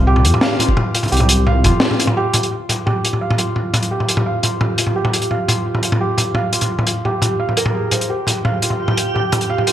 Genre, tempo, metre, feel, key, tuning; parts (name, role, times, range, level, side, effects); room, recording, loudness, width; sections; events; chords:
half-time drum and bass; 172 BPM; 4/4; half-time; A4 = 436 Hz
felt-muted upright piano; arpeggios; 0.0-9.7 s; F4 to F5; -21 LUFS; right 1 dB; low-pass filter, ping-pong delay
dark detuned saw bass; bass; 0.0-1.7 s; C2 to F2; -14 LUFS; equal
crunchy breakbeat drum kit; drums; 0.2-9.7 s; hi-hat, snare drum, toms; -17 LUFS; equal; gated reverb
electronic kick drum; drums; 0.7-1.7 s; -17 LUFS; equal
backwards swelling texture; texture; 4.3-9.7 s; G4; -27 LUFS; right 4 dB; built-in reverb, wide subtle chorus
light reverb; bright 1980s-style digital production; -15 LUFS; side -11 dB against mid
0.0-2.5 A section; 2.5-9.7 B section
filter sweep on felt piano 2.5-9.7
0.0 C5; 2.5 N.C.; 8.1 Fsus2